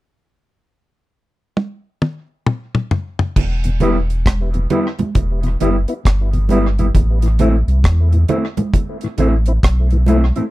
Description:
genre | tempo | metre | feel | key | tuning
roots reggae | 67 BPM | 4/4 | swing 62% on 16ths | E minor | A4 = 440 Hz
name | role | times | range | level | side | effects
deep reggae drum kit | drums | 1.6-10.5 s | crash cymbal, hi-hat, kick drum, rim click, toms | -17 LUFS | equal | none
warm sub bass | bass | 3.4-10.3 s | E1 to E2 | -15 LUFS | equal | none
congas | percussion | 3.4-10.3 s | none | -23 LUFS | right 5 dB | none
mellow tonewheel organ | accompaniment | 3.6-10.4 s | E2 to E4 | -23 LUFS | left 3 dB | overdrive, chorus vibrato, slow rotary speaker, tape echo
mellow electric guitar | accompaniment | 3.8-10.4 s | G3 to E4 | -20 LUFS | right 1 dB | dub echo
room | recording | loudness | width
little or no reverb | dry, close 1970s-style studio recording | -14 LUFS | side -17 dB against mid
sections
0.0-3.4 A section; 3.4-10.5 B section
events
drum fill 1.6-3.4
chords
0.0 N.C.; 3.4 Em; 6.9 Am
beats
0.68 1.57 2.47 | 3.37 4.26 5.16 6.05 | 6.95 7.84 8.74 9.63

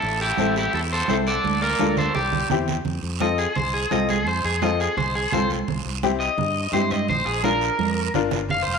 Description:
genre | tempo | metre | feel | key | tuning
latin, cumbia | 170 BPM | 4/4 | straight | F major | A4 = 438 Hz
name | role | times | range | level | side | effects
electric guitar at the edge of break-up | melody | 0.0-8.8 s | E4 to F5 | -23 LUFS | equal | spring reverb
modern bright fingered electric bass | bass | 0.0-8.8 s | F1 to G2 | -28 LUFS | equal | none
congas | percussion | 0.0-8.8 s | none | -27 LUFS | right 10 dB | none
guiro | percussion | 0.0-8.8 s | none | -34 LUFS | right 12 dB | none
bright upright piano | accompaniment | 0.4-8.4 s | C4 to Bb4 | -26 LUFS | left 11 dB | none
room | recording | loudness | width
moderate echo chamber reverb, RT60 1.4 s, studio reverb | 1960s-style stereo with parts hard left and right | -20 LUFS | side -5 dB against mid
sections
0.0-2.9 A section; 2.9-8.8 B section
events
drum fill 1.4-2.9, 7.8-8.5; clean electric guitar solo 2.9-8.8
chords
0.0 Am7; 1.4 Dm; 2.1 Cadd9; 2.9 F; 5.7 C; 7.1 Bb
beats
| 0.03 0.38 0.73 1.09 | 1.44 1.79 2.15 2.50 | 2.85 3.21 3.56 3.91 | 4.26 4.62 4.97 5.33 | 5.68 6.03 6.38 6.74 | 7.09 7.44 7.80 8.15 | 8.50

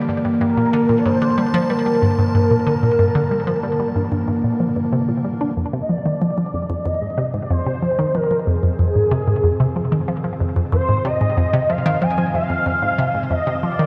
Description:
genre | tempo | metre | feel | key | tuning
ambient, sequencer-driven space music | 93 BPM | 4/4 | straight | G dorian, F dorian from 5.6 s | A4 = 440 Hz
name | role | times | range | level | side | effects
evolving wavetable pad | sustained chords | 0.0-13.9 s | D3 to A5 | -26 LUFS | equal | chorus, built-in reverb
hollow square pluck | riff | 0.0-13.9 s | F2 to D4 | -22 LUFS | equal | chorus, phaser, delay
expressive portamento lead | melody | 0.4-13.9 s | Ab4 to Ab5 | -24 LUFS | equal | ensemble chorus, vintage 12-bit sampler grit, delay
room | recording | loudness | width
wet cathedral reverb, RT60 6.0 s | in a vast, echoing space | -19 LUFS | mono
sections
0.0-5.6 A section; 5.6-13.9 B section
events
fade-in on ambient pad 5.6-13.9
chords
0.0 Gm; 5.6 Fm7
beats
| 0.41 1.05 1.70 2.34 | 2.99 3.63 4.28 4.92 | 5.57 6.21 6.86 7.50 | 8.15 8.79 9.44 10.09 | 10.73 11.38 12.02 12.67 | 13.31

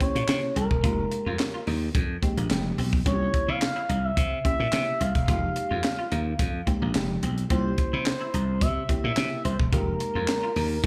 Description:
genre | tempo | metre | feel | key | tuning
early-eighties boogie funk | 108 BPM | 4/4 | straight | F minor | A4 = 439 Hz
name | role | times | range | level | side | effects
expressive synth lead | melody | 0.0-10.9 s | Bb4 to F5 | -32 LUFS | equal | chorus, slapback echo, tape echo
FM electric piano with soft pad layer | accompaniment | 0.0-10.9 s | Ab3 to G4 | -35 LUFS | equal | chorus, phaser, slapback echo
electric guitar at the edge of break-up | riff | 0.0-10.9 s | Bb3 to F4 | -42 LUFS | equal | ensemble chorus, slapback echo
tight funk drum kit | drums | 0.0-10.9 s | handclaps, hi-hat, kick drum, snare drum | -30 LUFS | equal | none
slap bass | bass | 0.2-10.9 s | E1 to C3 | -29 LUFS | equal | none
room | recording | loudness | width
small room ambience | live gig heard through the venue's PA, club ambience | -26 LUFS | mono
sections
0.0-10.9 A section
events
none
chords
0.0 C7b9; 0.8 Fm11; 3.1 C7b9; 5.3 Fm11; 7.5 C7b9; 9.7 Fm11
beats
0.28 | 0.84 1.39 1.95 2.50 | 3.06 3.62 4.17 4.73 | 5.28 5.84 6.39 6.95 | 7.50 8.06 8.62 9.17 | 9.73 10.28 10.84

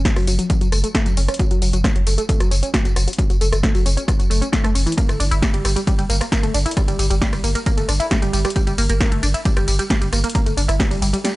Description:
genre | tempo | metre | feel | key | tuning
driving peak-time techno | 134 BPM | 4/4 | straight | unclear | A4 = 440 Hz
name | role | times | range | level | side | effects
saturated sub bass | bass | 0.0-11.1 s | F#1 to G1 | -20 LUFS | equal | sidechain pumping, low-pass filter
tight sequenced synth | riff | 0.1-11.3 s | E3 to E4 | -24 LUFS | equal | chorus, phaser, tube saturation, cassette tape, sidechain pumping, tape echo
electronic kick drum | drums | 0.1-10.9 s | none | -20 LUFS | equal | none
punchy analog drum machine | drums | 0.1-11.3 s | hi-hat, ride cymbal, rim click, snare drum, tambourine | -24 LUFS | left 1 dB | overdrive
room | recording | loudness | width
digital ambience | dry, gritty hardware recording, nothing above 10.5 kHz | -16 LUFS | side -19 dB against mid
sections
0.0-11.4 A section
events
none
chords
0.0 F#m; 5.0 Gm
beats
0.05 0.50 0.95 | 1.40 1.84 2.29 2.74 | 3.19 3.63 4.08 4.53 | 4.98 5.42 5.87 6.32 | 6.77 7.22 7.66 8.11 | 8.56 9.01 9.45 9.90 | 10.35 10.80 11.25

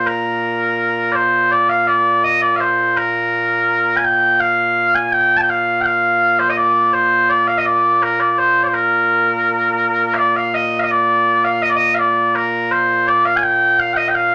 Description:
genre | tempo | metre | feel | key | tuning
scottish traditional, Scottish pipe music | 83 BPM | 2/4 | straight | Bb major | A4 = 440 Hz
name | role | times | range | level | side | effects
mellow small bagpipes | solo | 0.0-14.3 s | Bb2 to A5 | -16 LUFS | equal | none
room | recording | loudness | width
wet studio reverb, RT60 0.6 s | none | -16 LUFS | mono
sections
0.0-10.2 A section; 10.2-14.3 B section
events
none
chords
none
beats
| 0.06 0.78 | 1.50 2.23 | 2.95 3.67 | 4.39 5.12 | 5.84 6.56 | 7.29 8.01 | 8.73 9.46 | 10.18 10.90 | 11.62 12.35 | 13.07 13.79

